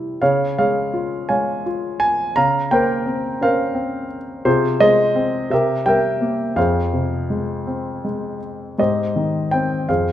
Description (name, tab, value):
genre	classical, lyrical solo piano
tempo	53-58 BPM (dotted quarters)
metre	6/8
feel	rubato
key	F minor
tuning	A4 = 440 Hz
part	warm concert grand piano	solo	0.0-10.1 s	F2 to Bb5	-17 LUFS	equal	none
room	moderate recital hall reverb, RT60 1.7 s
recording	none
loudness	-17 LUFS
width	side -11 dB against mid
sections	0.0-8.8 A section; 8.8-10.1 B section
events	none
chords	0.2 Db; 2.4 Bbmadd9/Db; 4.5 Fm/C; 5.5 C7; 6.6 Fm; 8.8 Abmaj7